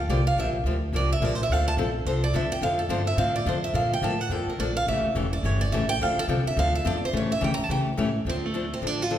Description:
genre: acoustic string swing (jazz manouche)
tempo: 213 BPM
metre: 4/4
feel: swing 58% on 8ths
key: D minor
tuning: A4 = 439 Hz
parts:
  - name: picked steel-string acoustic guitar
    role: melody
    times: 0.0-9.2 s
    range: A3 to Bb5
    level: -27 LUFS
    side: right 2 dB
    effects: none
  - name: upright bass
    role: bass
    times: 0.0-9.2 s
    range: E1 to D3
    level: -27 LUFS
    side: equal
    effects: none
  - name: picked steel-string acoustic guitar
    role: accompaniment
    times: 0.1-9.2 s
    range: C#3 to A4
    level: -28 LUFS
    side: left 3 dB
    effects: none
room: wet recital hall reverb, RT60 1.7 s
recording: recorded in a church or concert hall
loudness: -23 LUFS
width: side -11 dB against mid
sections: 0.0-8.3 A section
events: steel-string acoustic guitar solo 0.0-8.3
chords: 0.0 Gm7; 1.5 Dm7; 3.7 Bbmaj7; 4.9 A7; 6.0 Dm7; 7.1 A7; 8.3 Dm7

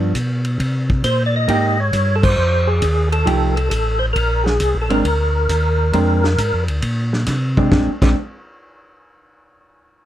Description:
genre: soul jazz organ trio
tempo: 135 BPM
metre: 4/4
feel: swing 68% on 8ths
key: Bb mixolydian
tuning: A4 = 440 Hz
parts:
  - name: vintage hollow-body jazz guitar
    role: accompaniment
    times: 0.0-8.2 s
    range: F3 to G4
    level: -18 LUFS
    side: right 2 dB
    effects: none
  - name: mellow tonewheel organ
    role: bass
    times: 0.0-8.1 s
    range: Ab1 to C3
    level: -18 LUFS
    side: equal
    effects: slow rotary speaker
  - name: warm soul drum kit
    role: drums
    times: 0.1-8.1 s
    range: crash cymbal, hi-hat, kick drum, ride cymbal, snare drum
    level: -22 LUFS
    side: equal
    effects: none
  - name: percussive tonewheel organ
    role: melody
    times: 1.0-6.6 s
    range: Ab4 to Eb5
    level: -19 LUFS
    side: equal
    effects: slow rotary speaker, chorus vibrato
room: light reverb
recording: dark, warm production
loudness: -15 LUFS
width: side -12 dB against mid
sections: 0.0-7.7 A section; 7.7-9.5 B section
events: band accent 2.2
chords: 0.0 G7; 0.6 Cm7; 2.4 F9; 4.2 Bb9

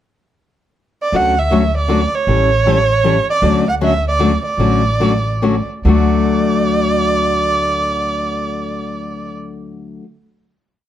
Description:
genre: acoustic string swing (jazz manouche)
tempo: 134-157 BPM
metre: 3/4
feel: swing 61% on 8ths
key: D major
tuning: A4 = 439 Hz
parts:
  - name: warm violin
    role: melody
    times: 1.0-9.3 s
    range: C#5 to F#5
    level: -17 LUFS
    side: right 4 dB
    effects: none
  - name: picked steel-string acoustic guitar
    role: accompaniment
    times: 1.1-10.1 s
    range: D3 to A4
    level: -18 LUFS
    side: left 4 dB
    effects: none
  - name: upright bass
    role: bass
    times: 1.1-10.0 s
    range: A1 to D2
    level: -19 LUFS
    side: equal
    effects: none
room: moderate studio reverb, RT60 0.9 s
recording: none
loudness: -13 LUFS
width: side -11 dB against mid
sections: 0.0-1.1 pickup bar; 1.1-5.9 A section; 5.9-8.5 final chord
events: slowing down 3.4-5.9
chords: 0.0 N.C.; 1.1 Dmaj7; 2.3 A7; 3.4 Dmaj7; 5.9 D

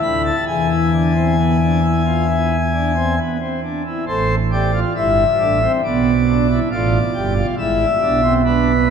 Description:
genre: classical, baroque-style 3-part fugue for pipe organ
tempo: 68 BPM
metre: 4/4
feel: straight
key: A minor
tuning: A4 = 439 Hz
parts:
  - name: pipe organ, principal chorus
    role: solo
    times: 0.0-8.9 s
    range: G1 to B5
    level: -15 LUFS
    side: equal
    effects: none
room: wet cathedral reverb, RT60 6.5 s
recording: none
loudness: -15 LUFS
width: side -7 dB against mid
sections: 0.0-4.1 A section; 4.1-8.9 B section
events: none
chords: 0.5 E; 4.1 Am; 5.8 Bm7b5; 7.6 E7/G#

